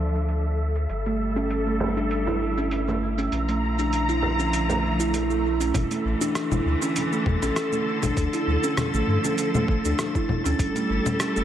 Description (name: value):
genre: organic downtempo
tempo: 99 BPM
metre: 4/4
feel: swing 54% on 16ths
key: A phrygian dominant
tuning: A4 = 441 Hz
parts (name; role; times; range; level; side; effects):
- clear studio string section; sustained chords; 0.0-11.4 s; D3 to Bb5; -28 LUFS; left 1 dB; sidechain pumping
- warm sub bass; bass; 0.0-11.4 s; F1 to G2; -27 LUFS; equal; sidechain pumping
- wind-like tuned noise texture; texture; 0.0-11.4 s; E5 to A6; -36 LUFS; right 2 dB; built-in reverb
- dusty soul sampler-style drum kit; drums; 0.2-11.4 s; congas, hi-hat, rim click, shaker; -30 LUFS; left 2 dB; overdrive, analog delay
- kalimba; arpeggios; 1.1-11.4 s; A3 to E4; -26 LUFS; right 2 dB; analog delay
- frame drum; percussion; 1.8-4.8 s; none; -34 LUFS; right 2 dB; analog delay
- swell; sound effects; 4.9-5.7 s; none; -35 LUFS; left 1 dB; none
- electronic kick drum; drums; 5.7-10.7 s; none; -26 LUFS; equal; overdrive
room: moderate spring reverb, RT60 1.9 s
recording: echo-heavy mix, low-pass filter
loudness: -22 LUFS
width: side -10 dB against mid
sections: 0.0-5.7 A section; 5.7-11.4 B section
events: filter sweep 0.0-5.7; swell 4.9-5.7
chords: 0.0 Dm; 0.9 Gsus2; 3.3 Bb; 5.7 Asus4; 8.2 Dm; 10.6 Gsus2